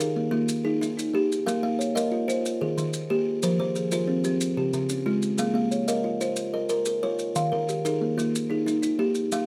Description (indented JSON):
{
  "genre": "southern african traditional, mbira-style interlocking cycle",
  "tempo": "122 BPM (dotted quarters)",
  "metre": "12/8",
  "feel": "straight",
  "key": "unclear",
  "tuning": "A4 = 440 Hz",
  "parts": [
    { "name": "buzzing kalimba", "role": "arpeggios", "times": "0.0-9.5 s", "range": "Db3 to F5", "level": "-28 LUFS", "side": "equal", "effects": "none" },
    { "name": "kalimba", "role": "arpeggios", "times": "0.0-9.3 s", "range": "Db3 to F5", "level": "-30 LUFS", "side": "equal", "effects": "none" },
    { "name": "maracas", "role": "percussion", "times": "0.0-9.5 s", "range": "none", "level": "-38 LUFS", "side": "equal", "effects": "none" }
  ],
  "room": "light reverb",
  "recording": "close, detailed microphones",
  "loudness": "-26 LUFS",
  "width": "mono",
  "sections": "0.0-9.5 A section",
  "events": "none",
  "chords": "0.0 Eb; 1.5 Bbm; 2.4 Eb; 3.4 Fm; 4.4 Db; 5.4 Bbm; 7.4 Eb",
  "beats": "0.00 0.48 0.97 | 1.47 1.96 2.44 2.94 | 3.43 3.92 4.41 4.90 | 5.39 5.88 6.37 6.86 | 7.35 7.85 8.34 8.83 | 9.32"
}